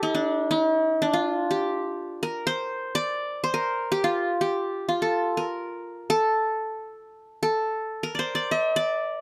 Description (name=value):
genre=arabic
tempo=124 BPM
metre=4/4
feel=straight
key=D maqam bayati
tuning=A4 = 440 Hz
part: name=qanun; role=melody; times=0.0-9.2 s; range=D4 to E5-50c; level=-26 LUFS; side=equal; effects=none
room=light reverb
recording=close, detailed microphones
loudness=-26 LUFS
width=mono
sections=0.0-9.2 A section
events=none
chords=none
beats=| 0.03 0.52 1.00 1.49 | 1.97 2.46 2.94 3.43 | 3.91 4.40 4.88 5.37 | 5.85 6.33 6.82 7.30 | 7.78 8.27 8.75